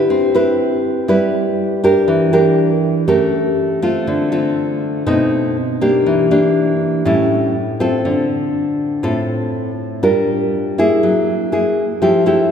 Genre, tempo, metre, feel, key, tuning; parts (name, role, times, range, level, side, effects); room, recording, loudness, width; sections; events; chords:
bossa nova; 121 BPM; 4/4; straight; D minor; A4 = 440 Hz
nylon-string guitar; solo; 0.0-12.5 s; A2 to B4; -13 LUFS; equal
wet church reverb, RT60 3.6 s; recorded in a church or concert hall; -14 LUFS; side -8 dB against mid
0.0-8.0 A section; 8.0-12.5 A section
0.1 Cmaj7; 2.1 Em7b5; 3.1 A7b9; 4.1 Dm7; 5.1 B7b9; 6.1 Em7b5; 7.1 A7; 8.0 Dm7; 10.0 Gm7; 11.0 F#9